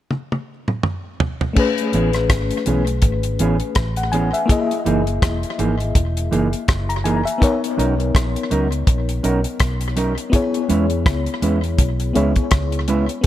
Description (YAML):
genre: lovers rock reggae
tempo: 82 BPM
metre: 4/4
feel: swing 58% on 16ths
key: unclear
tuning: A4 = 444 Hz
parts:
  - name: damped 70s drum kit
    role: drums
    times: 0.1-13.3 s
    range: crash cymbal, hi-hat, kick drum, rim click, toms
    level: -20 LUFS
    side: equal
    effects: tape echo
  - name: FM electric piano with tremolo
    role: accompaniment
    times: 1.5-13.3 s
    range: A3 to A#5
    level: -22 LUFS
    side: left 4 dB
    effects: tape echo
  - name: mellow electric guitar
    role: stabs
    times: 1.9-13.0 s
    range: E3 to B4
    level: -23 LUFS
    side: right 3 dB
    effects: none
  - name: vintage muted fingered electric bass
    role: bass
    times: 1.9-13.3 s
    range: E1 to E2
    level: -22 LUFS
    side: equal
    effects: none
room: light reverb, studio reverb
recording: none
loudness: -17 LUFS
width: side -13 dB against mid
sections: 0.0-1.6 A section; 1.6-13.2 B section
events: drum fill 0.1-1.6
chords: 0.0 N.C.; 1.6 Amaj9; 4.5 F#13; 7.4 Bmaj9; 10.3 E6